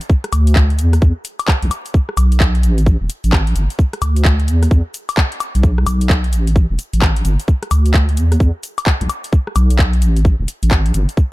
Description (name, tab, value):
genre	UK garage, two-step garage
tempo	130 BPM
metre	4/4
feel	swing 63% on 16ths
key	unclear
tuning	A4 = 440 Hz
part	garage drum kit	drums	0.0-11.3 s	handclaps, hi-hat, rim click, shaker, woodblock	-22 LUFS	left 2 dB	none
part	electronic kick drum	drums	0.1-11.3 s	none	-12 LUFS	equal	none
part	deep soft wobble bass	bass	0.3-11.1 s	E1 to E2	-13 LUFS	equal	chorus, sidechain pumping
room	little or no reverb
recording	dark, warm production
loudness	-13 LUFS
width	side -19 dB against mid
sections	0.0-11.3 A section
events	none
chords	none